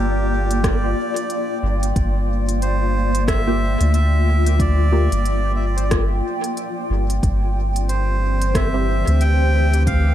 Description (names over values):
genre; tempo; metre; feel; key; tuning
ambient dub; 91 BPM; 4/4; swing 59% on 16ths; G dorian; A4 = 440 Hz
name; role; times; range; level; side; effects
melodica; melody; 0.0-10.1 s; G4 to G5; -26 LUFS; right 2 dB; dub echo
granular cloud pad; sustained chords; 0.0-10.1 s; E3 to G5; -24 LUFS; left 1 dB; built-in reverb
filtered dub chord stab; stabs; 0.0-8.9 s; Bb3 to G4; -28 LUFS; equal; phaser, lush chorus, dub echo
soft dub sub bass; bass; 0.0-10.1 s; G1 to D2; -18 LUFS; equal; none
organic electronic drum kit; drums; 0.5-10.0 s; hi-hat, rim click; -28 LUFS; equal; overdrive, dub echo
electronic kick drum; drums; 0.6-10.0 s; none; -21 LUFS; equal; none
room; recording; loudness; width
little or no reverb; echo-heavy mix; -16 LUFS; side -12 dB against mid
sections
0.0-10.1 A section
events
none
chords
0.0 Gm7; 7.2 C/G